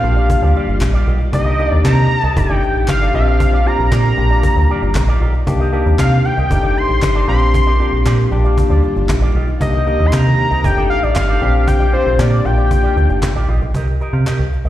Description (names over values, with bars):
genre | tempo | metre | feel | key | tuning
early-eighties boogie funk | 116 BPM | 4/4 | straight | C dorian | A4 = 440 Hz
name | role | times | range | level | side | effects
fat analog lead | melody | 0.0-13.5 s | C5 to C6 | -19 LUFS | equal | slapback echo, tape echo
barky tine electric piano | accompaniment | 0.0-13.3 s | A3 to G4 | -21 LUFS | left 6 dB | slapback echo
soft string machine | sustained chords | 0.0-13.7 s | D3 to D5 | -27 LUFS | equal | ensemble chorus
electric guitar with an envelope filter | riff | 0.0-14.7 s | Eb4 to F5 | -27 LUFS | right 4 dB | wide subtle chorus, slapback echo
metallic FM bass | bass | 0.0-14.7 s | F1 to C3 | -14 LUFS | equal | none
cajon | drums | 0.0-14.7 s | none | -22 LUFS | equal | none
group handclap | percussion | 0.8-14.4 s | none | -31 LUFS | left 2 dB | slapback echo
room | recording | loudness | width
little or no reverb | live gig heard through the venue's PA, recital hall reverb | -12 LUFS | side -13 dB against mid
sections
0.0-13.7 A section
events
none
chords
0.0 Ebmaj9/Bb; 1.3 Cm7; 2.4 F13; 3.1 Bb6; 4.2 Ebmaj9/Bb; 5.5 Cm7; 6.5 F13; 7.3 Bb6; 8.3 Ebmaj9/Bb; 9.6 Cm7; 10.6 F13; 11.4 Bb6; 12.5 Ebmaj9/Bb; 13.7 Cm7